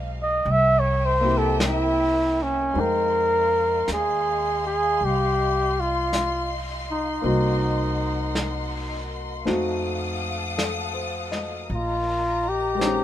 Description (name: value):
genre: jazz ballad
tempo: 54 BPM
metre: 4/4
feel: swing 67% on 8ths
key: F minor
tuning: A4 = 436 Hz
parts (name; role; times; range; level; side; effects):
- warm grand piano; accompaniment; 0.0-13.0 s; C3 to G5; -29 LUFS; left 2 dB; none
- warm symphonic string section; sustained chords; 0.0-13.0 s; A4 to Eb6; -32 LUFS; left 1 dB; none
- upright bass; bass; 0.0-13.0 s; Bb1 to F2; -28 LUFS; equal; none
- mellow flugelhorn; melody; 0.2-13.0 s; Db4 to E5; -22 LUFS; equal; none
- vintage brush drum kit; drums; 0.5-13.0 s; brushed snare drum, hi-hat, snare drum; -30 LUFS; equal; none
room: little or no reverb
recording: minimal, uncompressed stereo recording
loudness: -21 LUFS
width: side -12 dB against mid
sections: 0.0-2.7 A section; 2.7-13.0 B section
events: flugelhorn solo 0.0-2.7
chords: 0.4 C7; 2.7 Fm7; 7.2 Cm7b5; 9.5 F7b9; 11.7 Bbm11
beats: 0.44 1.59 | 2.74 3.87 4.99 6.12 | 7.23 8.35 9.46 10.58 | 11.69 12.81